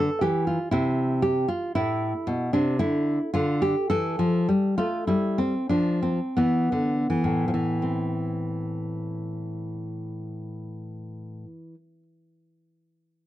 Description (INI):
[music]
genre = classical, baroque-style dance for nylon-string guitar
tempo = 40-62 BPM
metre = 3/4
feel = rubato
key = A minor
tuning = A4 = 439 Hz
[part]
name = nylon-string guitar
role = solo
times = 0.0-12.0 s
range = A2 to A4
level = -23 LUFS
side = equal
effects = none
[sound]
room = light reverb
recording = dry, close 1970s-style studio recording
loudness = -23 LUFS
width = side -14 dB against mid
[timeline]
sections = 0.0-7.8 A section; 7.8-12.1 B section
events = slowing down 0.0-7.8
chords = 0.0 Dmadd9; 0.7 Am/C; 2.8 N.C.; 3.9 Esus4; 6.4 E5; 7.8 Am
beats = | 0.71 1.73 2.77 | 3.88 5.07 6.37 | 7.82 9.26 10.65